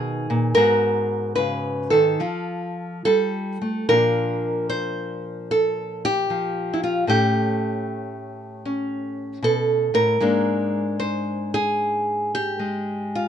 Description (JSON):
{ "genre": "solo jazz", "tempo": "75 BPM", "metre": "4/4", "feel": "swing 66% on 8ths, rubato", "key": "unclear", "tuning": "A4 = 440 Hz", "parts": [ { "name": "nylon-string guitar", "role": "solo", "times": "0.0-13.3 s", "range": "G#2 to C5", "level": "-20 LUFS", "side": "equal", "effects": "none" } ], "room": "light reverb", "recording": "nothing above 10.4 kHz", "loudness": "-20 LUFS", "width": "side -9 dB against mid", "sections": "0.0-3.9 A section; 3.9-13.3 B section", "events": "none", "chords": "0.0 B6; 0.6 G#m9; 2.2 Fadd9; 3.9 Bbadd9; 7.1 A9; 10.2 Absus2" }